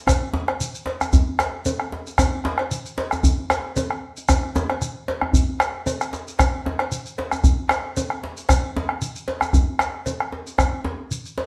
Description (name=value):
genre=west african traditional, West African drum ensemble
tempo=114 BPM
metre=4/4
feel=swing 54% on 16ths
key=none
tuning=none
part: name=bombo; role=percussion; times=0.1-10.9 s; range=none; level=-23 LUFS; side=equal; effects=none
part: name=cowbell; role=percussion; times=0.1-11.5 s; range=none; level=-32 LUFS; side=equal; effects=none
part: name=djembe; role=percussion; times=0.1-11.5 s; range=none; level=-28 LUFS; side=equal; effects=none
part: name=shekere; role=percussion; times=0.1-11.3 s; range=none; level=-32 LUFS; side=equal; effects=none
room=wet studio reverb, RT60 0.8 s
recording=band playing live in one room, lossy compression artefacts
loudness=-23 LUFS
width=mono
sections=0.0-11.5 A section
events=none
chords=none